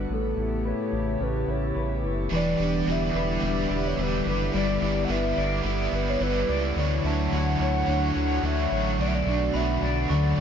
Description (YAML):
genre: dream pop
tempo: 108 BPM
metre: 4/4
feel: straight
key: unclear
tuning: A4 = 440 Hz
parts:
  - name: hollow soft pad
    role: sustained chords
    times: 0.0-10.4 s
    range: C#3 to C#5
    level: -30 LUFS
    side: right 1 dB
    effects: chorus, low-pass filter
  - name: mellow electric guitar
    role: arpeggios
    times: 0.0-10.4 s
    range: A2 to D5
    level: -29 LUFS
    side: left 3 dB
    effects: lush chorus, low-pass filter, ping-pong delay
  - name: round analog bass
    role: bass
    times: 0.0-10.4 s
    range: E1 to D2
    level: -29 LUFS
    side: equal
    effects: none
  - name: hollow clarinet-like synth lead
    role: melody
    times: 0.1-10.4 s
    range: A4 to F#5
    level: -31 LUFS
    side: equal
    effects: chorus, phaser, low-pass filter, ping-pong delay
  - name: overdriven electric guitar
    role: accompaniment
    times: 2.3-10.4 s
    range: B2 to D5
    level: -31 LUFS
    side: right 3 dB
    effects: tremolo, lush chorus
  - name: glockenspiel with hard plastic mallets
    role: texture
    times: 7.1-10.4 s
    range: A5 to C#6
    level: -40 LUFS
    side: left 2 dB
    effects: ping-pong delay
room: moderate shimmer reverb, RT60 4.1 s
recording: dark, warm production, nothing above 7.7 kHz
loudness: -23 LUFS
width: side -8 dB against mid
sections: 0.0-2.3 A section; 2.3-10.4 B section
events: none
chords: 0.1 A9; 2.3 Em7; 4.5 G6; 6.8 Dmaj9; 9.0 Bm7